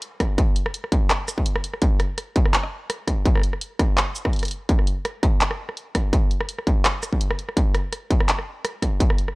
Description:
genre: drum and bass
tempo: 167 BPM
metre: 4/4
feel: swing 54% on 16ths, half-time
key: none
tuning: none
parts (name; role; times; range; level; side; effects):
- drum and bass drum kit; drums; 0.0-9.3 s; handclaps, hi-hat, rim click, shaker; -24 LUFS; equal; none
- electronic kick drum; drums; 0.2-9.1 s; none; -20 LUFS; equal; distortion
room: little or no reverb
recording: dry, gritty hardware recording, cassette tape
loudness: -20 LUFS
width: side -25 dB against mid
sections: 0.0-9.4 A section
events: none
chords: none

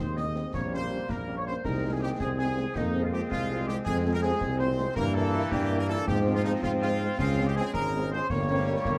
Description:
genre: military-style march for wind band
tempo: 108 BPM (dotted quarters)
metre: 6/8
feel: straight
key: unclear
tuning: A4 = 439 Hz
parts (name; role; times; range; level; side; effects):
- dark trumpet section; melody; 0.0-9.0 s; Eb4 to Eb5; -39 LUFS; equal; none
- mellow euphonium; second line; 0.0-9.0 s; Ab3 to Eb4; -37 LUFS; equal; none
- mellow hollow flute section; second line; 0.0-9.0 s; Eb5 to Eb6; -40 LUFS; equal; none
- mellow woodwind section; second line; 0.0-9.0 s; Eb4 to Eb5; -40 LUFS; equal; none
- bright trombone section; sustained chords; 0.0-9.0 s; E3 to C4; -37 LUFS; equal; none
- mellow tuba; bass; 0.0-9.0 s; G1 to Ab2; -32 LUFS; equal; none
- mellow French horn section; accompaniment; 0.2-8.7 s; Eb3 to E4; -38 LUFS; equal; none
- concert snare drum, clash cymbals and concert bass drum; drums; 0.2-9.0 s; none; -39 LUFS; equal; none
room: moderate studio reverb, RT60 0.7 s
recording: dark, warm production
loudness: -28 LUFS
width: mono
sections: 0.0-9.0 A section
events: none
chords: 0.0 Ab; 0.5 Gdim/Bb; 1.7 Ab/C; 2.8 Fm; 5.0 Edim/G; 6.1 Fm/Ab; 7.2 Dbmaj7; 8.3 Gdim

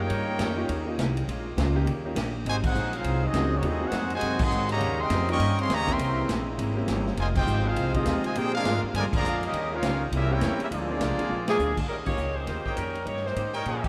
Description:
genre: jazz, big band swing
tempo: 204 BPM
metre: 4/4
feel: swing 62% on 8ths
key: Eb major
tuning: A4 = 441 Hz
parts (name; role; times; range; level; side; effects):
- clear trumpet section; melody; 0.0-11.8 s; Bb3 to Db6; -33 LUFS; equal; none
- bright trombone section; second line; 0.0-11.7 s; C3 to G4; -37 LUFS; equal; none
- mellow saxophone section; sustained chords; 0.0-11.9 s; C3 to F4; -41 LUFS; equal; none
- upright bass; bass; 0.0-13.9 s; F1 to Bb2; -32 LUFS; equal; none
- archtop guitar, miked and amplified; accompaniment; 0.1-13.9 s; F2 to G4; -40 LUFS; equal; none
- swinging big-band drum kit; drums; 0.1-13.9 s; crash cymbal, hi-hat, kick drum, ride cymbal, snare drum; -35 LUFS; equal; none
- clear baby grand piano; accompaniment; 0.6-12.2 s; Ab3 to Bb4; -38 LUFS; equal; none
- warm saxophone section; melody; 11.5-13.9 s; F3 to Db5; -31 LUFS; equal; none
- clear trumpet section; stabs; 12.7-13.9 s; Eb4 to G5; -37 LUFS; equal; none
room: moderate cathedral reverb, RT60 5.2 s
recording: in a vast, echoing space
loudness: -27 LUFS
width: mono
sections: 0.0-11.9 A section; 11.9-13.9 B section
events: band accent 2.6, 4.4, 7.3, 9.1, 11.4, 12.0; drum fill 11.3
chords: 0.0 Eb7; 1.3 Bbm7; 1.9 Eb7; 2.5 Ab7; 4.8 Eb7; 6.0 C7b9; 7.2 Fm7; 8.4 Bb7; 9.5 Eb7; 10.1 C7b9; 10.7 Bb7; 11.9 Eb7

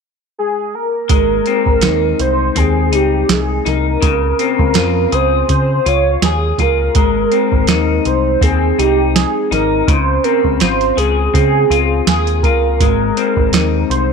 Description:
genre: indie pop, bedroom pop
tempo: 82 BPM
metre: 4/4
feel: swing 55% on 16ths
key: Ab major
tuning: A4 = 441 Hz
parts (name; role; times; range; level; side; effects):
- warm velvety synth lead; melody; 0.4-14.1 s; G4 to Db5; -16 LUFS; right 4 dB; wide subtle chorus, slapback echo
- electric guitar through a small old amp; accompaniment; 1.1-14.1 s; Db3 to Ab4; -17 LUFS; left 17 dB; lush chorus, vibrato effect
- deep dub picked electric bass; bass; 1.1-14.1 s; Ab1 to Db3; -18 LUFS; equal; none
- soft vintage rhythm box; drums; 1.1-14.1 s; hi-hat, kick drum, snare drum; -17 LUFS; right 3 dB; overdrive
room: light reverb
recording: 1960s-style stereo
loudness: -12 LUFS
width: side -5 dB against mid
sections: 0.0-1.1 A section; 1.1-14.1 B section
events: none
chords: 0.0 N.C.; 1.1 Ab; 4.0 Dbmaj7; 7.0 Ab; 9.9 Dbmaj7; 12.8 Ab

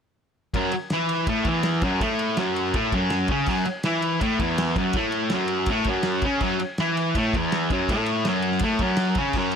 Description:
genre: garage rock duo or trio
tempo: 163 BPM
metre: 4/4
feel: straight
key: unclear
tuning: A4 = 441 Hz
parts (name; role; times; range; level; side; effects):
- fuzz guitar; riff; 0.5-9.5 s; E2 to E4; -22 LUFS; equal; distortion
- cloth-damped thuddy drum kit; drums; 0.5-9.6 s; crash cymbal, kick drum, ride cymbal, snare drum; -29 LUFS; equal; none
room: light reverb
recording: none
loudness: -21 LUFS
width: side -7 dB against mid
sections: 0.6-9.6 A section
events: none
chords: 0.6 F#5

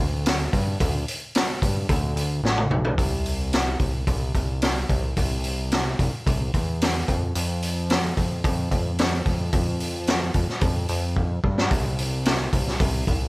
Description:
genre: classic rock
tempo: 110 BPM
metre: 4/4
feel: straight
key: unclear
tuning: A4 = 439 Hz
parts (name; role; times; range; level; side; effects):
- fat analog bass; bass; 0.0-13.3 s; A1 to G2; -25 LUFS; equal; none
- raw garage drum kit; drums; 0.3-13.2 s; hi-hat, kick drum, snare drum, toms; -23 LUFS; equal; none
room: little or no reverb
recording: none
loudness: -21 LUFS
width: side -23 dB against mid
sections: 0.0-3.0 A section; 3.0-13.3 B section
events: drum fill 2.4-3.0, 11.2-11.7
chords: none

